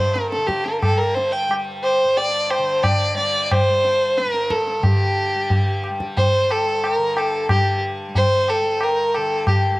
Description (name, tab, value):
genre	indian classical, Hindustani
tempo	90 BPM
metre	5/4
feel	straight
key	G raga bhimpalasi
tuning	A4 = 440 Hz
part	rich violin	melody	0.0-9.8 s	G4 to G5	-19 LUFS	equal	cassette tape
part	tanpura	drone	0.0-9.8 s	G2 to G3	-31 LUFS	equal	none
part	tabla	percussion	0.2-9.7 s	none	-21 LUFS	equal	none
room	light reverb, small room ambience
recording	home recording on cassette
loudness	-17 LUFS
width	side -19 dB against mid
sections	0.0-9.8 A section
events	none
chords	none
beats	0.16 0.83 | 1.50 2.17 2.84 3.51 4.18 | 4.84 5.51 6.17 6.83 7.50 | 8.16 8.81 9.47